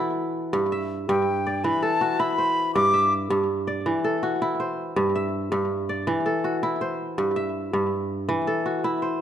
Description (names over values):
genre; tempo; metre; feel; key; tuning
west african traditional, West African string and xylophone music; 108 BPM (dotted quarters); 12/8; straight; unclear; A4 = 440 Hz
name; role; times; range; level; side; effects
kora; arpeggios; 0.0-9.2 s; G2 to E5; -23 LUFS; equal; slapback echo
silver concert flute; melody; 1.1-3.1 s; G5 to D6; -23 LUFS; left 2 dB; none
room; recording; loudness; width
moderate recital hall reverb, RT60 1.6 s; dark, warm production; -22 LUFS; side -10 dB against mid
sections
0.0-9.2 A section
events
none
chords
0.0 E9sus4; 0.5 G5; 1.6 E5; 2.7 G5; 3.9 D9/E; 5.0 G5; 6.1 D9/E; 7.2 Em/G; 8.3 Am6/E